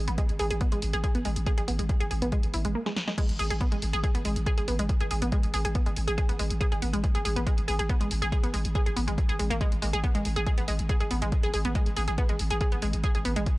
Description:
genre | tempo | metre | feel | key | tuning
driving peak-time techno | 140 BPM | 4/4 | straight | G# minor | A4 = 440 Hz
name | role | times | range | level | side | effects
wide unison pluck | riff | 0.0-13.5 s | G#3 to G#4 | -31 LUFS | equal | tube saturation, sidechain pumping, tape echo
growling 808-style bass | bass | 0.0-13.5 s | G#1 | -30 LUFS | equal | overdrive, sidechain pumping, low-pass filter
punchy analog drum machine | drums | 0.1-13.6 s | crash cymbal, hi-hat, snare drum | -37 LUFS | equal | sidechain pumping on hats, sidechain pumping on cymbals
electronic kick drum | drums | 0.2-13.6 s | none | -27 LUFS | equal | none
room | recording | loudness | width
little or no reverb | dry, gritty hardware recording, cassette tape | -25 LUFS | side -20 dB against mid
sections
0.0-3.2 A section; 3.2-13.6 B section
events
filter sweep on synth arpeggio sound 0.0-3.2; break 2.8-3.2; drum fill 2.9-3.2; band accent 3.1; drop 3.2-13.6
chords
none

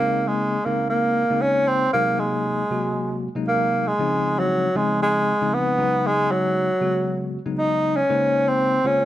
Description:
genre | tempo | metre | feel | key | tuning
jazz | 117 BPM | 4/4 | straight | Bb minor | A4 = 440 Hz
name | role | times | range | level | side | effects
breathy tenor saxophone | melody | 0.0-9.1 s | Gb3 to D#4 | -20 LUFS | equal | none
bell-like tine electric piano | accompaniment | 0.0-9.1 s | C3 to C5 | -25 LUFS | left 2 dB | medium stereo tremolo
room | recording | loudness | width
wet studio reverb, RT60 0.5 s | none | -19 LUFS | side -13 dB against mid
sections
0.0-9.1 A section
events
none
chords
0.0 Bbm11; 1.9 Ab9; 4.0 Dbmaj9; 5.8 B69; 8.1 Bbm11

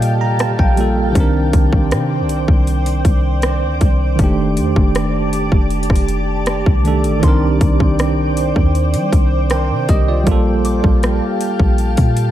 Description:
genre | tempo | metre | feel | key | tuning
contemporary R&B | 79 BPM | 4/4 | straight | C dorian | A4 = 439 Hz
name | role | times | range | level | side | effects
bell-like tine electric piano | accompaniment | 0.0-12.3 s | Eb3 to Bb5 | -19 LUFS | right 2 dB | medium stereo tremolo
granular cloud pad | sustained chords | 0.0-12.3 s | G4 to D6 | -22 LUFS | right 1 dB | built-in reverb
soft 808-style bass | bass | 0.0-12.3 s | F1 to G3 | -17 LUFS | equal | none
trap drum kit | drums | 0.0-12.3 s | hi-hat, kick drum, rim click | -16 LUFS | equal | overdrive
soft synth bell | texture | 7.2-11.9 s | C6 to D6 | -33 LUFS | left 2 dB | chorus, tape echo
room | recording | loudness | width
digital ambience | none | -13 LUFS | side -12 dB against mid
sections
0.0-12.3 A section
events
tine electric piano fill 0.0-1.2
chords
0.0 Gm9/Bb; 1.2 Cm9; 4.2 F13; 7.2 Cm9; 10.3 Gm9/Bb

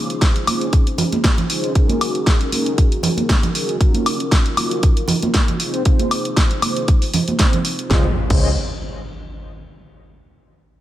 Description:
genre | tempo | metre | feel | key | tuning
nu-disco, nu disco | 117 BPM | 4/4 | swing 55% on 16ths | Db major | A4 = 437 Hz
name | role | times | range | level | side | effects
mellow synth brass | accompaniment | 0.0-8.5 s | C4 to Eb5 | -24 LUFS | equal | chorus, sidechain pumping, tape echo
pop drum kit | drums | 0.1-8.4 s | crash cymbal, hi-hat, snare drum, woodblock | -22 LUFS | left 1 dB | none
electronic kick drum | drums | 0.2-8.4 s | none | -16 LUFS | equal | none
congas | percussion | 0.5-7.6 s | none | -23 LUFS | right 2 dB | none
fingered electric bass with an envelope filter | bass | 7.9-8.5 s | Db2 | -21 LUFS | equal | none
impact | sound effects | 7.9-10.0 s | none | -25 LUFS | equal | none
room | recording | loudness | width
light reverb | none | -15 LUFS | side -13 dB against mid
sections
0.0-7.9 A section; 7.9-10.0 B section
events
filter sweep on analog polysynth 0.0-7.9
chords
0.0 Dbmaj7; 1.8 Gb6; 3.8 Ebm9; 5.6 Fm7; 7.9 Dbmaj7

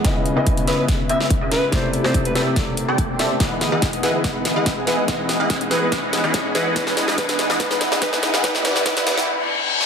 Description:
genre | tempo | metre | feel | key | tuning
future bass | 143 BPM | 4/4 | half-time | unclear | A4 = 440 Hz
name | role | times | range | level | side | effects
felt-muted upright piano | accompaniment | 0.0-3.4 s | C3 to D#5 | -24 LUFS | left 2 dB | vintage 12-bit sampler grit, sidechain pumping, tape echo
shimmering ambient pad | sustained chords | 0.0-9.9 s | D3 to C#4 | -31 LUFS | equal | chorus, built-in reverb, phaser, sidechain pumping
supersaw stab | riff | 0.0-9.3 s | E3 to G5 | -23 LUFS | equal | phaser, sidechain pumping, low-pass filter
saturated sub bass | bass | 0.0-9.3 s | none | barely audible | none | none
big-room dance drum kit | drums | 0.0-9.9 s | hi-hat, snare drum | -24 LUFS | equal | high-pass filter on snare, high-pass filter on hats, high-pass filter on room
electronic kick drum | drums | 0.0-8.9 s | none | -23 LUFS | equal | none
riser and reverse cymbal | sound effects | 0.3-9.9 s | none | -27 LUFS | left 1 dB | none
mellow alto saxophone | melody | 0.7-9.2 s | B4 to E5 | -26 LUFS | equal | sidechain pumping, tape echo
Celtic harp | arpeggios | 3.4-9.9 s | D4 to D#5 | -28 LUFS | left 4 dB | sidechain pumping, tape echo
room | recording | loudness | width
moderate digital room reverb, RT60 1.1 s | dense, heavily limited modern master, high-pass filter | -17 LUFS | side -6 dB against mid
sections
0.0-9.9 A section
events
build-up 0.0-9.9; drum fill 0.0-9.3; filter sweep on supersaw synth 0.0-9.9; filter sweep on ambient pad 0.0-9.9; filter sweep 0.0-9.9; riser 0.3-9.3; reverse cymbal 9.3-9.9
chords
0.0 C#m9; 1.7 C69; 3.4 Emaj7; 6.8 C#m9; 8.4 C69

